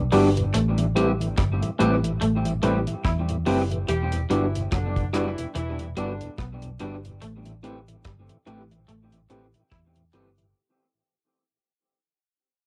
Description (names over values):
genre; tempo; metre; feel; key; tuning
lovers rock reggae; 72 BPM; 4/4; swing 58% on 16ths; A dorian; A4 = 440 Hz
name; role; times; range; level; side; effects
tonewheel organ; accompaniment; 0.0-10.5 s; E2 to G4; -35 LUFS; equal; cassette tape, analog delay
vintage muted fingered electric bass; bass; 0.0-10.5 s; E1 to E2; -29 LUFS; equal; none
overdriven tine electric piano; accompaniment; 0.1-10.4 s; C4 to B4; -29 LUFS; equal; fast tremolo, cassette tape, plate reverb
twangy electric guitar; riff; 0.1-10.4 s; E3 to E4; -32 LUFS; equal; cassette tape
electric guitar through a small old amp; stabs; 0.1-10.3 s; E3 to G4; -30 LUFS; equal; cassette tape, analog delay, plate reverb
deep reggae drum kit; drums; 0.1-10.5 s; hi-hat, kick drum, rim click; -33 LUFS; equal; analog delay
mellow saxophone section; second line; 3.9-6.3 s; D3 to G4; -35 LUFS; equal; cassette tape, plate reverb
room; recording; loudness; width
moderate studio ambience, RT60 0.5 s; home recording on cassette; -24 LUFS; mono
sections
0.0-10.6 A section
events
fade-out 0.0-10.6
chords
0.0 Em7; 0.5 Am7; 3.9 Em7; 7.2 Am7